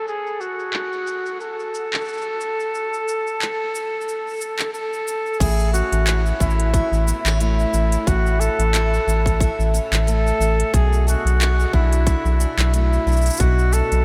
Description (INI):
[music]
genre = folktronica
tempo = 90 BPM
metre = 4/4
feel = swing 56% on 16ths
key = A major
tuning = A4 = 440 Hz
[part]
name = clear flugelhorn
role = melody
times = 0.0-14.0 s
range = E4 to A4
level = -26 LUFS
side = equal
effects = analog delay
[part]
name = organic electronic drum kit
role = drums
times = 0.1-14.0 s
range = cabasa, crash cymbal, handclaps, hi-hat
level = -31 LUFS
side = equal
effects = overdrive
[part]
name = picked steel-string acoustic guitar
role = arpeggios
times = 5.4-14.0 s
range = A2 to F#4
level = -29 LUFS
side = equal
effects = none
[part]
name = round analog bass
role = bass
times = 5.4-14.0 s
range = A1 to B1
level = -21 LUFS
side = equal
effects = none
[part]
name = electronic kick drum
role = drums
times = 5.4-13.6 s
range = none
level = -22 LUFS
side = equal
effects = overdrive
[sound]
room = moderate huge ambient reverb, RT60 8.0 s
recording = dreamy mix soaked in reverb, low-pass filter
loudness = -20 LUFS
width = mono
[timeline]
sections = 0.0-5.4 A section; 5.4-14.0 B section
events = none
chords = 0.0 N.C.; 5.4 A; 10.7 Bm7